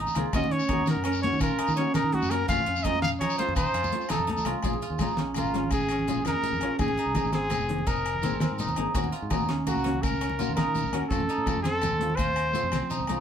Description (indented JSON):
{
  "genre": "highlife guitar band",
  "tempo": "112 BPM (dotted quarters)",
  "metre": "12/8",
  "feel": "straight",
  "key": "Bb minor",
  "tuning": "A4 = 440 Hz",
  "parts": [
    { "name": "guzheng", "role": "arpeggios", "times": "0.0-13.2 s", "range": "Bb3 to Ab4", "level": "-30 LUFS", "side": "right 3 dB", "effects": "none" },
    { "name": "fingered electric bass", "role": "bass", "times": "0.0-13.2 s", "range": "F1 to F3", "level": "-33 LUFS", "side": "equal", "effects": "none" },
    { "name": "congas", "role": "percussion", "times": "0.1-13.2 s", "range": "none", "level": "-36 LUFS", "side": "equal", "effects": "none" },
    { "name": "shekere", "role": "percussion", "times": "0.1-13.1 s", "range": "none", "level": "-38 LUFS", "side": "left 5 dB", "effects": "none" },
    { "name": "mellow electric guitar", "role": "accompaniment", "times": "0.2-13.2 s", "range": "Eb3 to Ab4", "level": "-33 LUFS", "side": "left 4 dB", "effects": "none" },
    { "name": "damped 70s drum kit", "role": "drums", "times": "0.2-13.2 s", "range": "hi-hat, kick drum, snare drum", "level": "-32 LUFS", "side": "equal", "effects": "none" },
    { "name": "agogo bells", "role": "percussion", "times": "0.2-13.2 s", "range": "none", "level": "-38 LUFS", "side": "left 8 dB", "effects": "none" },
    { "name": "warm trumpet", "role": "melody", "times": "0.3-13.1 s", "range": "F4 to F5", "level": "-29 LUFS", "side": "equal", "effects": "none" }
  ],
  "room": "moderate studio reverb, RT60 0.5 s",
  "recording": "band playing live in one room",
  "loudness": "-24 LUFS",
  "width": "side -8 dB against mid",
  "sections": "0.0-4.6 A section; 4.6-13.2 B section",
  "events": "drum fill 12.4-13.2",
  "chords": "0.3 Ebm7; 2.5 F; 4.6 Bbm7; 6.8 Abadd9; 8.9 Ebm7; 11.1 F"
}